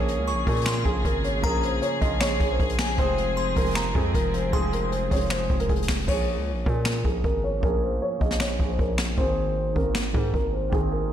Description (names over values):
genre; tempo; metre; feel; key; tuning
hip hop, trap; 155 BPM; 4/4; half-time; Bb minor; A4 = 440 Hz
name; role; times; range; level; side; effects
dark concert grand piano; melody; 0.0-11.1 s; Ab4 to Eb5; -28 LUFS; equal; low-pass filter, ping-pong delay
felt-muted upright piano; accompaniment; 0.0-11.1 s; Eb3 to Bb4; -31 LUFS; right 3 dB; wide subtle chorus, low-pass filter
warm studio string section; sustained chords; 0.0-6.0 s; Db3 to Ab4; -31 LUFS; left 2 dB; none
distorted 808-style bass; bass; 0.0-11.1 s; F1 to Bb2; -29 LUFS; equal; distortion
jazz brush drum kit; drums; 0.1-10.8 s; crash cymbal, finger snaps, hi-hat, kick drum, snare drum; -26 LUFS; equal; none
delicate synth tine bell; second line; 0.3-5.7 s; Ab5 to Db6; -34 LUFS; left 2 dB; chorus, phaser, ping-pong delay
room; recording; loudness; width
moderate lush hall reverb, RT60 1.6 s, small room ambience; dreamy mix soaked in reverb; -22 LUFS; side -10 dB against mid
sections
0.0-6.1 A section; 6.1-11.1 B section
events
hi-hats muted 6.1-11.1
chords
0.0 Bbm7; 3.0 Fm; 6.1 Bbm7; 9.2 Abadd9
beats
0.27 0.66 1.05 | 1.44 1.82 2.21 2.60 | 2.98 3.37 3.76 4.14 | 4.53 4.92 5.31 5.69 | 6.08 6.47 6.86 7.24 | 7.63 8.02 8.40 8.79 | 9.18 9.56 9.95 10.34 | 10.73 11.11